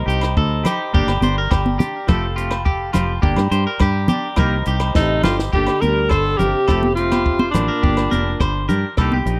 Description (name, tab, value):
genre	highlife guitar band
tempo	104 BPM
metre	4/4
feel	straight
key	G minor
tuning	A4 = 440 Hz
part	overdriven combo organ	sustained chords	0.0-5.5 s	C5 to Bb5	-33 LUFS	equal	spring reverb
part	semi-hollow electric guitar	arpeggios	0.0-9.4 s	F4 to C5	-27 LUFS	equal	spring reverb, tape echo
part	fingered electric bass	bass	0.0-9.4 s	F1 to G2	-23 LUFS	equal	none
part	clean electric guitar	accompaniment	0.1-9.4 s	F3 to G4	-29 LUFS	equal	none
part	compact cocktail drum kit	drums	0.1-9.4 s	hi-hat, kick drum, rim click, snare drum	-22 LUFS	equal	none
part	agogo bells	percussion	0.2-9.1 s	none	-32 LUFS	equal	none
part	congas	percussion	0.7-9.3 s	none	-24 LUFS	equal	none
part	bright alto saxophone	melody	5.0-8.6 s	D4 to Bb4	-23 LUFS	equal	tape echo
part	trombone with bucket mute	second line	5.0-8.7 s	Bb2 to G3	-28 LUFS	equal	none
room	small room ambience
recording	dry, close 1970s-style studio recording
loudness	-18 LUFS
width	mono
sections	0.0-5.5 A section; 5.5-9.4 B section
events	drum fill 5.0-5.5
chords	0.0 Cm7; 0.9 Gm; 2.1 Fadd9; 3.2 Gm; 4.4 Cm7; 5.5 Gm; 6.7 Fadd9; 7.8 Gm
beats	0.36 | 0.94 1.51 2.08 2.66 | 3.23 3.81 4.38 4.96 | 5.53 6.11 6.68 7.26 | 7.83 8.41 8.98